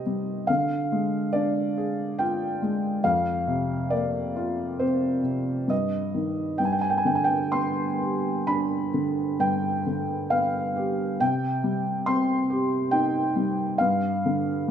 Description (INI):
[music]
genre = classical, lyrical solo piano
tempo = 63-72 BPM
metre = 3/4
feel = rubato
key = unclear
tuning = A4 = 440 Hz
[part]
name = felt-muted upright piano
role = solo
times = 0.0-14.7 s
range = F2 to C6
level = -23 LUFS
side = equal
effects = none
[sound]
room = moderate recital hall reverb, RT60 1.4 s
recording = minimal, uncompressed stereo recording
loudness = -23 LUFS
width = side -8 dB against mid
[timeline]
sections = 0.0-14.7 A section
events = none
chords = 0.5 Ddim; 3.0 Fsus4; 5.7 Eb/G; 6.6 G; 11.2 Cm; 13.8 G5